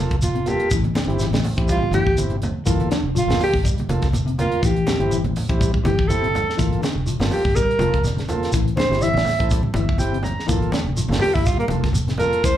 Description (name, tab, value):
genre	afrobeat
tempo	123 BPM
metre	4/4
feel	swing 54% on 16ths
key	G dorian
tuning	A4 = 442 Hz
part	combo organ	accompaniment	0.0-12.4 s	Bb3 to Bb5	-28 LUFS	right 2 dB	slapback echo
part	electric guitar at the edge of break-up	arpeggios	0.0-12.6 s	C3 to G3	-27 LUFS	left 6 dB	ensemble chorus, slapback echo
part	fingered electric bass	bass	0.0-12.6 s	F1 to A1	-23 LUFS	equal	none
part	tight funk drum kit	drums	0.1-12.6 s	hi-hat, kick drum, snare drum	-24 LUFS	equal	none
part	breathy alto saxophone	melody	0.2-12.6 s	Bb3 to E5	-21 LUFS	right 1 dB	slapback echo
part	congas	percussion	0.2-12.3 s	none	-27 LUFS	right 1 dB	none
part	shekere	percussion	0.2-12.6 s	none	-27 LUFS	equal	none
room	light reverb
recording	live gig heard through the venue's PA, club reverb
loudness	-18 LUFS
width	side -11 dB against mid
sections	0.0-12.6 A section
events	alto saxophone solo 0.0-12.6; transistor combo organ fill 9.5-10.5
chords	0.0 Gm7; 0.7 Am7; 2.7 Gm7; 4.6 Am7; 6.6 Gm7; 8.5 Am7; 10.5 Gm7